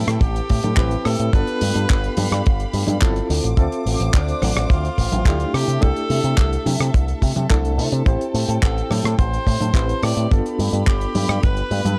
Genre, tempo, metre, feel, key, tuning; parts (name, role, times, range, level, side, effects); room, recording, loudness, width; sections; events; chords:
nu-disco, nu disco; 107 BPM; 4/4; straight; A minor; A4 = 445 Hz
clear tenor saxophone; melody; 0.0-12.0 s; D4 to D5; -30 LUFS; equal; vintage 12-bit sampler grit, tape echo
reed electric piano; accompaniment; 0.0-12.0 s; A3 to E5; -29 LUFS; equal; overdrive, fast tremolo
dark studio string section; sustained chords; 0.0-12.0 s; G4 to D6; -36 LUFS; equal; sidechain pumping
picked electric bass with an envelope filter; bass; 0.0-11.9 s; G1 to C3; -23 LUFS; equal
damped 70s drum kit; drums; 0.1-12.0 s; handclaps, hi-hat, rim click; -30 LUFS; equal
kick drum; drums; 0.2-11.5 s; -19 LUFS; equal
congas; percussion; 0.6-12.0 s; -31 LUFS; equal
small room ambience; dry, gritty hardware recording, cassette tape; -19 LUFS; mono
0.0-12.0 A section
0.0 Am7; 1.3 G7; 3.3 Dm7; 5.5 C6; 8.1 Am7; 10.3 G7